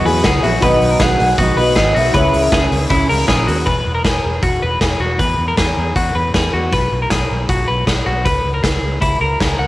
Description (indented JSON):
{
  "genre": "jangly indie pop",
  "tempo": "157 BPM",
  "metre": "4/4",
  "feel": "straight",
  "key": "unclear",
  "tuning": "A4 = 439 Hz",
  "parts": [
    { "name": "warm velvety synth lead", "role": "melody", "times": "0.0-3.3 s", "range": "D#5 to F#5", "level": "-18 LUFS", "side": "equal", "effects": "chorus, cassette tape" },
    { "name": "glockenspiel with soft plastic mallets", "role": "second line", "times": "0.0-3.3 s", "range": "D#6 to F#6", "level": "-32 LUFS", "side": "right 2 dB", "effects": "none" },
    { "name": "fingerpicked twelve-string acoustic guitar", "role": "accompaniment", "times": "0.0-3.7 s", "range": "B2 to E4", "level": "-20 LUFS", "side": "right 4 dB", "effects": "cassette tape" },
    { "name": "warm upright piano", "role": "accompaniment", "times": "0.0-3.7 s", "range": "D#4 to G#5", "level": "-22 LUFS", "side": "left 4 dB", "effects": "cassette tape" },
    { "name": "twelve-string electric guitar", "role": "arpeggios", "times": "0.0-9.7 s", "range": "E4 to B4", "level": "-18 LUFS", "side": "left 2 dB", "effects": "spring reverb, cassette tape, tape echo" },
    { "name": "vintage muted fingered electric bass", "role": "bass", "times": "0.1-9.7 s", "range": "E1 to E2", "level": "-20 LUFS", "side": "equal", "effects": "none" },
    { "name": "raw garage drum kit", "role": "drums", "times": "0.1-9.5 s", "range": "hi-hat, kick drum, snare drum", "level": "-18 LUFS", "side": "equal", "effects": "none" }
  ],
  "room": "light reverb",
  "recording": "home recording on cassette",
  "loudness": "-13 LUFS",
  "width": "side -16 dB against mid",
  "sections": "0.0-3.7 A section; 3.7-9.7 B section",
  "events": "upright piano fill 0.0-0.6",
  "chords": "0.0 C#m; 0.6 B; 2.1 C#m; 3.7 Esus2; 6.7 B5; 8.3 C#m"
}